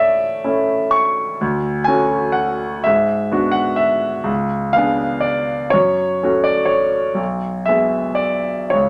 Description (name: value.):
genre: classical, romantic nocturne for solo piano.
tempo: 41 BPM (dotted quarters).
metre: 6/8.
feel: rubato.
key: unclear.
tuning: A4 = 440 Hz.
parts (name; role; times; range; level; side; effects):
clear concert grand piano; solo; 0.0-8.9 s; B1 to C#6; -18 LUFS; equal; none.
room: wet studio reverb, RT60 0.8 s.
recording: none.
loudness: -18 LUFS.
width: mono.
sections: 0.0-8.9 A section.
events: none.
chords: 0.0 A; 1.4 Dmaj7; 2.9 G#m7b5; 4.3 C#5; 5.7 F#m; 7.2 Bm6.